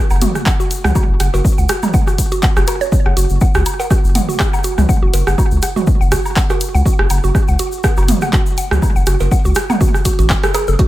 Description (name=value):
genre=minimal techno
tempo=122 BPM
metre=4/4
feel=swing 55% on 16ths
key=F# minor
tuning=A4 = 439 Hz
part: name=mallet-like synth pluck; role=riff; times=0.1-10.9 s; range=F#4 to F#5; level=-22 LUFS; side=right 2 dB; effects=chorus, sidechain pumping, tape echo
part: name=saturated sub bass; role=bass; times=0.1-10.8 s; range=F#1 to C#2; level=-15 LUFS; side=equal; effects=tube saturation, sidechain pumping
part: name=egg shaker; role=percussion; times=0.1-10.8 s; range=none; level=-29 LUFS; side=left 3 dB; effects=none
part: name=organic electronic drum kit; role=percussion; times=0.1-10.7 s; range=cowbell, rim click, toms, woodblock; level=-20 LUFS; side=right 2 dB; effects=small room ambience, tape echo
part: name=punchy analog drum machine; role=drums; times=0.2-10.9 s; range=handclaps, hi-hat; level=-22 LUFS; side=equal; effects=small room ambience
part: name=electronic kick drum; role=drums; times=0.5-10.9 s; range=none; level=-15 LUFS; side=equal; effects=small room ambience
room=light reverb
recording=none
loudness=-12 LUFS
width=side -15 dB against mid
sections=0.0-10.8 A section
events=none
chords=none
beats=0.46 | 0.95 1.45 1.94 2.43 | 2.92 3.41 3.90 4.40 | 4.89 5.38 5.87 6.36 | 6.86 7.35 7.84 8.33 | 8.82 9.31 9.81 10.30 | 10.79